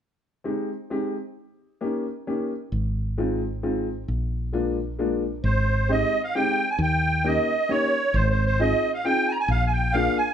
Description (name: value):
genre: musette waltz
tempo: 133 BPM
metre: 3/4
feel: straight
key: Ab major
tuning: A4 = 444 Hz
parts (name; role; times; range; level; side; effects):
- warm upright piano; accompaniment; 0.4-10.2 s; Ab3 to Ab4; -26 LUFS; left 2 dB; none
- woody fretless electric bass; bass; 2.7-10.1 s; Ab1 to Eb2; -25 LUFS; equal; none
- musette accordion; melody; 5.4-10.3 s; C5 to Bb5; -23 LUFS; right 2 dB; none
room: moderate large studio reverb, RT60 1.1 s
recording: band playing live in one room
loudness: -22 LUFS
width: side -9 dB against mid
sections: 0.0-5.4 A section; 5.4-10.3 B section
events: none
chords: 0.0 Abmaj7; 1.4 Eb7; 2.7 Ab6; 4.1 Bb7; 5.4 Abmaj7; 6.8 Eb7; 8.1 Ab6; 9.5 Bb7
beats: 0.45 0.91 | 1.36 1.81 2.27 | 2.72 3.17 3.62 | 4.08 4.53 4.99 | 5.44 5.89 6.35 | 6.80 7.25 7.70 | 8.14 8.59 9.04 | 9.49 9.94